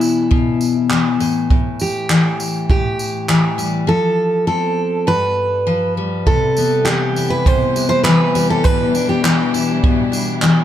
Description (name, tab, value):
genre	acoustic pop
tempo	101 BPM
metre	4/4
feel	straight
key	C major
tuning	A4 = 440 Hz
part	picked steel-string acoustic guitar	melody	0.0-10.6 s	E4 to C5	-19 LUFS	right 2 dB	ping-pong delay
part	picked steel-string acoustic guitar	accompaniment	0.0-10.6 s	G2 to E4	-17 LUFS	left 3 dB	none
part	jazz brush drum kit	drums	0.0-10.6 s	handclaps, kick drum, tambourine	-18 LUFS	right 1 dB	none
part	warm studio string section	sustained chords	6.3-10.6 s	B2 to G4	-26 LUFS	right 2 dB	none
room	light reverb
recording	dark, warm production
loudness	-14 LUFS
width	side -11 dB against mid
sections	0.0-6.3 A section; 6.3-10.6 B section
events	none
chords	0.0 E5/B; 1.2 A5; 3.9 F; 5.1 G7; 6.3 Cmaj7; 8.6 Em7/B